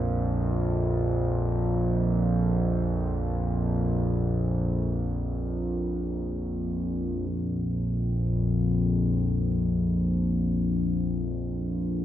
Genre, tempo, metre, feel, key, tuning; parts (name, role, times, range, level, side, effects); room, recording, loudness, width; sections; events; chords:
ambient; free time; A4 = 441 Hz
analog drone; solo; 0.0-12.0 s; Bb1 to F2; -24 LUFS; equal; chorus, tape echo
wet cathedral reverb, RT60 5.6 s; -24 LUFS; side -12 dB against mid
0.0-7.3 A section; 7.3-12.0 B section
0.0 Bb5